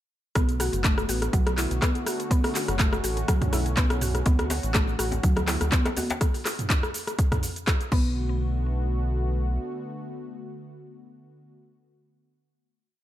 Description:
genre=afro house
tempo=123 BPM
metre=4/4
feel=swing 54% on 16ths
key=B minor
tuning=A4 = 440 Hz
part: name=warm analog pad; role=sustained chords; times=0.4-11.5 s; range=D3 to F#4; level=-35 LUFS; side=equal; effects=chorus, sidechain pumping
part: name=mallet-like synth pluck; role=arpeggios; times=0.4-8.4 s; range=F#3 to F#4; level=-31 LUFS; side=equal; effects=chorus, sidechain pumping, ping-pong delay
part: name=round analog bass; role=bass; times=0.4-9.6 s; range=F#1 to D2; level=-27 LUFS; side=equal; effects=sidechain pumping
part: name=deep house drum kit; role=drums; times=0.4-8.0 s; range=cabasa, crash cymbal, handclaps, hi-hat, rim click, toms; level=-28 LUFS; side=equal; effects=overdrive
part: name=electronic kick drum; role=drums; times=0.4-8.0 s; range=none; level=-23 LUFS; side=equal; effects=overdrive
part: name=djembe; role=percussion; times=4.3-6.2 s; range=none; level=-33 LUFS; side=left 3 dB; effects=none
part: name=congas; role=percussion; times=4.5-6.1 s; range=none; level=-35 LUFS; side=right 3 dB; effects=none
room=little or no reverb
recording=none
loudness=-23 LUFS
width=side -13 dB against mid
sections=0.4-8.2 drop; 8.2-12.1 final hit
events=drop 0.4-8.2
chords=0.4 Bm7; 4.3 Dmaj7; 6.2 N.C.; 7.9 Bm7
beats=| 0.36 0.84 1.33 1.82 | 2.31 2.80 3.28 3.77 | 4.26 4.75 5.24 5.72 | 6.21 6.70 7.19 7.67 | 8.16 8.65 9.14 9.62 | 10.11 10.60 11.09

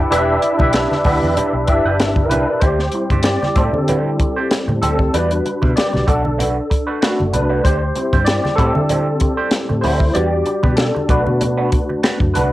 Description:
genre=lush 1970s-style soul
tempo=96 BPM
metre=4/4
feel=swing 54% on 16ths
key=unclear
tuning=A4 = 442 Hz
part: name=barky tine electric piano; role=accompaniment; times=0.0-12.5 s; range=G3 to D6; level=-18 LUFS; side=left 1 dB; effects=ensemble chorus, cassette tape
part: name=vintage muted fingered electric bass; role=bass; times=0.0-12.5 s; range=E1 to D3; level=-21 LUFS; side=equal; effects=none
part: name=electric guitar through a small old amp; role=riff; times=0.1-12.5 s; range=G3 to F#5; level=-23 LUFS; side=right 3 dB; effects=wah, cassette tape
part: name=compact cocktail drum kit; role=drums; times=0.1-12.5 s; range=hi-hat, kick drum, snare drum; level=-18 LUFS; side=equal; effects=cassette tape
part: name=congas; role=percussion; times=0.1-12.5 s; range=none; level=-25 LUFS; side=right 2 dB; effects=none
room=light reverb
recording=home recording on cassette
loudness=-14 LUFS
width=side -16 dB against mid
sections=0.0-2.6 A section; 2.6-12.5 B section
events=tine electric piano solo 2.6-12.5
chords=0.0 Em7; 2.6 D7sus4; 5.1 Em7; 6.1 Bm7; 7.6 D7sus4; 10.2 Em7; 11.1 Bm7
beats=| 0.11 0.74 1.37 1.99 | 2.62 3.25 3.88 4.51 | 5.13 5.76 6.39 7.02 | 7.65 8.27 8.90 9.53 | 10.16 10.79 11.41 12.04

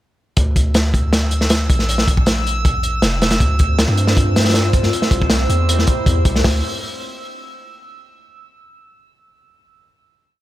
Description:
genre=drum and bass, jungle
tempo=158 BPM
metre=4/4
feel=straight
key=D minor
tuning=A4 = 440 Hz
part: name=long sustained 808-style bass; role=bass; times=0.4-6.6 s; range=F1 to G2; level=-18 LUFS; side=equal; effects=none
part: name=crunchy breakbeat drum kit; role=drums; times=0.4-6.5 s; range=hi-hat, kick drum, snare drum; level=-16 LUFS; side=equal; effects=none
part: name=drifting glass-harmonics texture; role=texture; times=0.9-6.5 s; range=E6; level=-27 LUFS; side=right 1 dB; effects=chorus, built-in reverb
part: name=warbly tape-like pad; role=sustained chords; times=3.7-6.6 s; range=A3 to C5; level=-24 LUFS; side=equal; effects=chorus, built-in reverb, phaser
room=small room ambience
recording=none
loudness=-14 LUFS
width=side -15 dB against mid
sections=0.4-6.4 drop; 6.4-8.0 final chord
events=drop 0.4-6.4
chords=0.4 Dsus2; 1.9 Bb5; 3.4 Dm7; 4.9 C7; 6.4 Dm7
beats=| 0.37 0.75 1.13 1.51 | 1.89 2.27 2.65 3.03 | 3.40 3.79 4.17 4.54 | 4.92 5.30 5.68 6.06 | 6.44

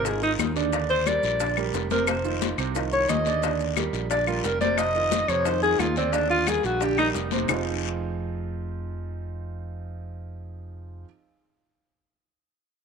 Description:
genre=Afro-Cuban jazz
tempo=177 BPM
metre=4/4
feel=straight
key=F minor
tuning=A4 = 440 Hz
part: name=breathy alto saxophone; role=melody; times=0.0-7.1 s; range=C4 to Eb5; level=-25 LUFS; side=left 1 dB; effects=none
part: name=warm grand piano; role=accompaniment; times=0.0-11.0 s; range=C3 to D5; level=-30 LUFS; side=right 12 dB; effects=none
part: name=fingered electric bass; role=bass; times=0.0-11.0 s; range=F1 to F2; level=-31 LUFS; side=equal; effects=none
part: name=bongos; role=percussion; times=0.0-7.6 s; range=none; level=-34 LUFS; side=left 13 dB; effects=none
part: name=congas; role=percussion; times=0.1-7.6 s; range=none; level=-33 LUFS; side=left 16 dB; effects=none
part: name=guiro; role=percussion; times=0.1-7.6 s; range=none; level=-37 LUFS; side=left 14 dB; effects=none
part: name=maracas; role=percussion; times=0.1-7.6 s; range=none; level=-39 LUFS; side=right 19 dB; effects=none
part: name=claves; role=percussion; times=0.4-7.6 s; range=none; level=-31 LUFS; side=left 11 dB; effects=none
room=moderate spring reverb, RT60 2.0 s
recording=1960s-style stereo with parts hard left and right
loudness=-22 LUFS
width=side -6 dB against mid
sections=0.0-7.5 A section; 7.5-10.2 B section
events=alto saxophone solo 0.0-7.5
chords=0.0 Fm7; 0.7 Ebmaj7; 2.1 F5; 3.4 Ebmaj7; 4.8 F5; 6.1 Ebmaj7; 7.5 Fm7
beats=0.05 0.39 | 0.72 1.06 1.40 1.74 | 2.07 2.41 2.75 3.09 | 3.42 3.76 4.10 4.44 | 4.78 5.12 5.46 5.79 | 6.13 6.47 6.81 7.15 | 7.49 7.83 8.16 8.50 | 8.84 9.18 9.52 9.86

